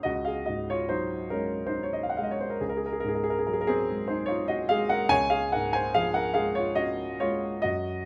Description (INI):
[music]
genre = classical, romantic nocturne for solo piano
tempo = 47 BPM (dotted quarters)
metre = 12/8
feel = rubato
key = Db major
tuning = A4 = 439 Hz
[part]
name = warm baby grand piano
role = solo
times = 0.0-8.1 s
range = Db2 to Ab5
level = -28 LUFS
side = equal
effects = none
[sound]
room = moderate large studio reverb, RT60 1.3 s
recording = close, detailed microphones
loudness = -28 LUFS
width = mono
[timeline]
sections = 0.0-8.1 A section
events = none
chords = 0.1 Ab7/Db